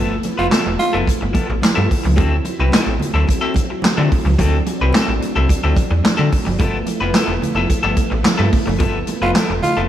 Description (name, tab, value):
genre	funk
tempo	109 BPM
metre	4/4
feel	straight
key	unclear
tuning	A4 = 443 Hz
part	electric guitar at the edge of break-up	accompaniment	0.0-9.9 s	F3 to B4	-21 LUFS	left 3 dB	harmonic tremolo
part	string machine, violins	sustained chords	0.0-9.9 s	F3 to E4	-25 LUFS	right 1 dB	ensemble chorus
part	slap-like FM bass	bass	0.0-9.9 s	E1 to D3	-18 LUFS	equal	none
part	swinging big-band drum kit	drums	0.2-9.8 s	handclaps, hi-hat, kick drum, snare drum	-19 LUFS	equal	none
part	congas	percussion	0.3-9.8 s	none	-26 LUFS	right 4 dB	none
part	growling tenor saxophone	second line	0.4-1.0, 9.2-9.8 s	F4	-20 LUFS	right 2 dB	none
room	light reverb, small room reverb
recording	small room ambience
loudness	-14 LUFS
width	side -11 dB against mid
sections	0.0-9.9 A section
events	band accent 0.0-2.2, 8.8-9.9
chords	0.0 G13; 2.2 D9; 6.6 G13